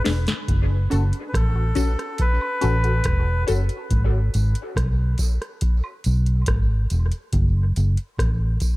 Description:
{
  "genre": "dub reggae",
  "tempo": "70 BPM",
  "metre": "4/4",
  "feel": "straight",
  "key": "F# minor",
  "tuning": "A4 = 445 Hz",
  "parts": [
    { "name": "melodica", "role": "melody", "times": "0.0-3.4 s", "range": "A4 to B4", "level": "-30 LUFS", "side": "equal", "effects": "dub echo" },
    { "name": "filtered dub chord stab", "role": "stabs", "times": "0.0-3.6 s", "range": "C#4 to B4", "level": "-29 LUFS", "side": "left 3 dB", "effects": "phaser, dub echo" },
    { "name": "vintage muted fingered electric bass", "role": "bass", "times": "0.1-8.6 s", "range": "E1 to B1", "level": "-20 LUFS", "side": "equal", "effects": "none" },
    { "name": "booming analog drum machine", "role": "drums", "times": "0.1-8.8 s", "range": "hi-hat, kick drum, rim click, snare drum", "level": "-22 LUFS", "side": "equal", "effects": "none" },
    { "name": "tambourine and woodblock", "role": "percussion", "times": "0.1-8.8 s", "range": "none", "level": "-40 LUFS", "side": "right 4 dB", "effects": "dub echo" }
  ],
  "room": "little or no reverb",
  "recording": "echo-heavy mix",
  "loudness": "-19 LUFS",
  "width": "side -20 dB against mid",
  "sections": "0.5-8.8 A section",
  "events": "drum fill 0.0-0.5",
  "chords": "0.5 F#m; 3.9 E (rootless); 7.3 F#m",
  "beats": "| 0.48 1.33 2.19 3.05 | 3.90 4.76 5.62 6.47 | 7.33 8.19"
}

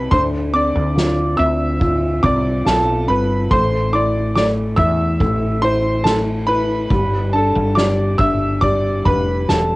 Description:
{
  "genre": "pop ballad",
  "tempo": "71 BPM",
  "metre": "4/4",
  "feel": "straight",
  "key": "unclear",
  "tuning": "A4 = 437 Hz",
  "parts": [
    { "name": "clear concert grand piano", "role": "melody", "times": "0.0-9.8 s", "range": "A4 to E6", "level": "-19 LUFS", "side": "equal", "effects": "cassette tape" },
    { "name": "felt-muted upright piano", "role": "accompaniment", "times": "0.0-9.8 s", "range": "D3 to G4", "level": "-21 LUFS", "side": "left 1 dB", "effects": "cassette tape" },
    { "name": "woody fretless electric bass", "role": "bass", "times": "0.0-9.8 s", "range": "E1 to E2", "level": "-20 LUFS", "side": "equal", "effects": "wide subtle chorus" },
    { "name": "soft-mallet drum kit", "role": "drums", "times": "0.1-9.7 s", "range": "kick drum, ride cymbal, snare drum", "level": "-23 LUFS", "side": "equal", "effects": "cassette tape" }
  ],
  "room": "studio ambience",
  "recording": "home recording on cassette",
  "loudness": "-15 LUFS",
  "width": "side -20 dB against mid",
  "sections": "0.0-9.8 A section",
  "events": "none",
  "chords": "0.1 Dm7; 3.5 Am; 6.9 Gsus2",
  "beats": "| 0.12 0.96 1.81 2.66 | 3.51 4.36 5.20 6.05 | 6.91 7.76 8.62 9.49"
}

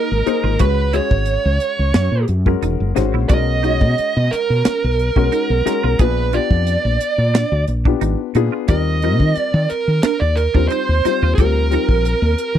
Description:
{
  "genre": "electric jazz fusion",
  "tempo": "89 BPM",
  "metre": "4/4",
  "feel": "straight",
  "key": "unclear",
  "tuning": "A4 = 440 Hz",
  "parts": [
    { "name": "dark smooth lead guitar", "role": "melody", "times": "0.0-12.6 s", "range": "Bb4 to D#5", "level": "-21 LUFS", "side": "right 3 dB", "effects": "overdrive, slapback echo" },
    { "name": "silver concert flute", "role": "second line", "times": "0.0-12.6 s", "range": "Bb4 to Eb5", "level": "-26 LUFS", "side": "right 10 dB", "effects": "none" },
    { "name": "warm grand piano", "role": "accompaniment", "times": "0.0-12.6 s", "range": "G3 to Eb5", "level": "-22 LUFS", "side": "left 16 dB", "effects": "none" },
    { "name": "clean electric guitar", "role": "stabs", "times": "0.0-11.9 s", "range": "Db4 to Ab4", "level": "-26 LUFS", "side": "right 18 dB", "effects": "ensemble chorus" },
    { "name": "woody fretless electric bass", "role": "bass", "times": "0.1-12.6 s", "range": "Fb1 to Eb3", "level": "-17 LUFS", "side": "equal", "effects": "none" },
    { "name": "tight funk drum kit", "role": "drums", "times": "0.3-12.5 s", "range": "hi-hat, kick drum, snare drum", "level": "-17 LUFS", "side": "equal", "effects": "none" }
  ],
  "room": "little or no reverb",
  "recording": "dry, close 1970s-style studio recording",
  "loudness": "-14 LUFS",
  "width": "side -10 dB against mid",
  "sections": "0.0-12.6 A section",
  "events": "none",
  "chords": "0.0 Ab69; 0.6 Dbm7; 2.0 Gb9; 3.3 B6; 6.0 Bb7b9; 8.7 Ebmaj9",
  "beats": "| 0.60 1.28 1.95 2.63 | 3.30 3.97 4.65 5.32 | 6.00 6.67 7.34 8.02 | 8.69 9.36 10.03 10.70 | 11.38 12.04"
}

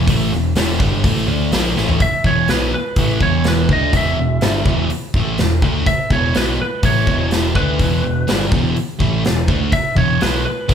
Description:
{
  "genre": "hard rock",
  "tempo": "124 BPM",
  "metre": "4/4",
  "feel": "straight",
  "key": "unclear",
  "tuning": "A4 = 440 Hz",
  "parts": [
    { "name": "sludgy distorted guitar", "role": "riff", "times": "0.0-10.7 s", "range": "E2 to D4", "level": "-18 LUFS", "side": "equal", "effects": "overdrive" },
    { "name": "picked electric bass", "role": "bass", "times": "0.0-10.7 s", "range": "E1 to D2", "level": "-22 LUFS", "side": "equal", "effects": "none" },
    { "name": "big rock drum kit", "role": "drums", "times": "0.1-10.7 s", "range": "hi-hat, kick drum, snare drum, toms", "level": "-19 LUFS", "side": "equal", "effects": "none" },
    { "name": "lightly driven lead guitar", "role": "melody", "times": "2.0-10.7 s", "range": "B4 to E5", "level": "-21 LUFS", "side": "right 2 dB", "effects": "none" }
  ],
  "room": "light reverb",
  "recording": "band playing live in one room",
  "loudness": "-14 LUFS",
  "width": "side -8 dB against mid",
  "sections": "0.0-2.0 A section; 2.0-10.7 B section",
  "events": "drum fill 1.8",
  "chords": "0.0 E5",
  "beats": "| 0.08 0.56 1.04 1.52 | 2.00 2.49 2.97 3.45 | 3.94 4.42 4.90 5.38 | 5.87 6.35 6.83 7.32 | 7.80 8.28 8.77 9.25 | 9.73 10.21 10.70"
}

